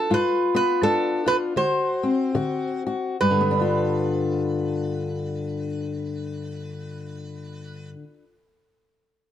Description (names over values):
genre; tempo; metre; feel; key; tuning
acoustic country blues, solo or duo; 69-87 BPM; 4/4; swing 61% on 8ths; G mixolydian; A4 = 444 Hz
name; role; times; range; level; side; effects
lap resonator guitar; melody; 0.0-7.9 s; A4 to C5; -24 LUFS; right 4 dB; plate reverb
fingerpicked steel-string acoustic guitar; accompaniment; 0.0-8.3 s; G2 to F#4; -24 LUFS; left 3 dB; none
room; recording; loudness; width
moderate small room reverb, RT60 0.6 s; dark, warm production; -21 LUFS; side -10 dB against mid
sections
0.0-3.2 A section; 3.2-6.7 B section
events
slowing down 0.0-3.2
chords
0.0 G7; 1.6 D7; 3.2 G7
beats
| 0.12 0.82 1.57 2.36 | 3.20 4.07 4.95 5.82